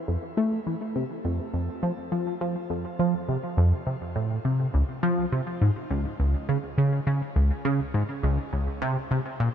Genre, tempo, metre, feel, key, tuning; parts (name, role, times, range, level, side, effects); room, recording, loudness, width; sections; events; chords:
ambient; 103 BPM; 4/4; straight; A4 = 441 Hz
tight sequenced synth; solo; 0.1-9.5 s; Db2 to A3; -24 LUFS; equal; chorus, phaser, analog delay
light reverb; -24 LUFS; side -9 dB against mid
0.0-9.5 A section